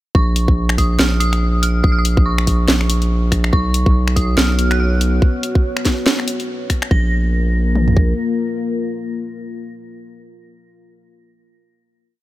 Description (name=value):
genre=deep dubstep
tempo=142 BPM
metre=4/4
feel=swing 58% on 16ths, half-time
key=Bb phrygian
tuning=A4 = 440 Hz
part: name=dark detuned synth bell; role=melody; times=0.1-11.8 s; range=Db6 to Bb6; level=-25 LUFS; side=right 1 dB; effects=chorus, dub echo
part: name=saturated sub bass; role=bass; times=0.1-8.1 s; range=Bb1 to B1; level=-16 LUFS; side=equal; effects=none
part: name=garage drum kit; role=drums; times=0.1-8.1 s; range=kick drum, toms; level=-15 LUFS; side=equal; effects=none
part: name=garage drum kit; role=drums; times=0.4-6.9 s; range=finger snaps, hi-hat, snare drum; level=-19 LUFS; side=equal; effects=none
part: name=dark analog pad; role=sustained chords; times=4.2-11.1 s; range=Bb3 to Db5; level=-23 LUFS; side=left 3 dB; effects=chorus
room=digital ambience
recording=none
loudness=-14 LUFS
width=side -16 dB against mid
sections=0.1-6.9 drop; 6.9-10.3 final chord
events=drop 0.1-6.9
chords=0.1 Bbm; 3.5 B5; 6.9 Bb5